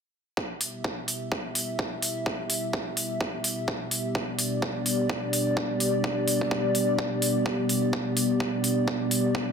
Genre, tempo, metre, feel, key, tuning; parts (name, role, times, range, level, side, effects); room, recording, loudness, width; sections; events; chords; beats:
bass house; 127 BPM; 4/4; swing 58% on 16ths; E minor; A4 = 439 Hz
dark analog pad; sustained chords; 0.4-9.5 s; B3 to E5; -26 LUFS; equal; chorus, sidechain pumping
electronic kick drum; drums; 0.4-9.5 s; -31 LUFS; right 1 dB; high-pass filter on kick, high-pass filter on room
electronic hi-hat; drums; 0.6-9.2 s; -28 LUFS; equal
moderate plate reverb, RT60 2.1 s; dense, heavily limited modern master; -25 LUFS; side -6 dB against mid
0.4-9.5 A section
filter sweep on analog synth pad 0.4-9.5
0.4 Em; 7.9 G
| 0.37 0.84 1.32 1.79 | 2.26 2.73 3.21 3.68 | 4.15 4.62 5.10 5.57 | 6.04 6.51 6.99 7.46 | 7.93 8.40 8.88 9.35